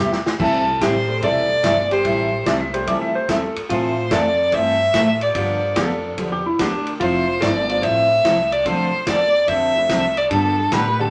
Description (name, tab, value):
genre	country, western swing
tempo	145 BPM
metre	4/4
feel	swing 67% on 8ths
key	C major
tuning	A4 = 444 Hz
part	clean lap steel guitar	second line	0.0-6.9 s	D4 to E5	-27 LUFS	equal	none
part	picked steel-string acoustic guitar	accompaniment	0.0-10.8 s	C3 to A4	-26 LUFS	equal	none
part	upright bass	bass	0.0-11.1 s	E1 to A2	-31 LUFS	equal	none
part	vintage drum kit	drums	0.1-10.8 s	crash cymbal, hi-hat, kick drum, ride cymbal, snare drum	-29 LUFS	equal	none
part	rich fiddle	melody	0.4-11.1 s	A4 to E5	-21 LUFS	equal	none
part	vintage hollow-body jazz guitar	second line	0.4-11.1 s	D4 to C5	-28 LUFS	equal	none
part	warm upright piano	accompaniment	0.4-11.1 s	D3 to A4	-33 LUFS	equal	none
room	wet studio ambience, RT60 0.5 s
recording	none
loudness	-19 LUFS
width	mono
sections	0.4-11.1 A section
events	drum fill 0.0-0.4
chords	0.4 C6; 2.0 Am7; 3.7 Fmaj7; 5.4 G7; 7.0 Fmaj7; 8.7 Dm7; 10.3 G